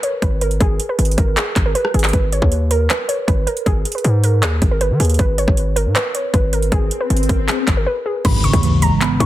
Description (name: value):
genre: hip hop, trap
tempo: 157 BPM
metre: 4/4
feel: half-time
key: G# minor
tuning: A4 = 440 Hz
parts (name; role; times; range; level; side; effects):
- warbly dusty pluck; melody; 0.0-9.3 s; G#4 to C#6; -21 LUFS; right 1 dB; chorus, ping-pong delay
- trap drum kit; drums; 0.0-9.3 s; crash cymbal, handclaps, hi-hat, kick drum, rim click; -18 LUFS; equal; overdrive
- hard-hitting 808-style bass; bass; 0.2-9.3 s; G#1 to D#3; -17 LUFS; equal; none
- swell and impact; sound effects; 6.5-9.3 s; none; -25 LUFS; left 2 dB; none
- mellow tine electric piano; accompaniment; 8.2-9.3 s; G#2 to B3; -17 LUFS; right 1 dB; slow stereo tremolo
room: digital ambience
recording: dense, heavily limited modern master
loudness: -14 LUFS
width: side -14 dB against mid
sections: 0.0-8.2 A section; 8.2-9.3 B section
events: swell 6.5-8.2; break 7.9-8.2; impact 8.2-9.3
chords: 0.0 G#m; 8.2 C#m7/G#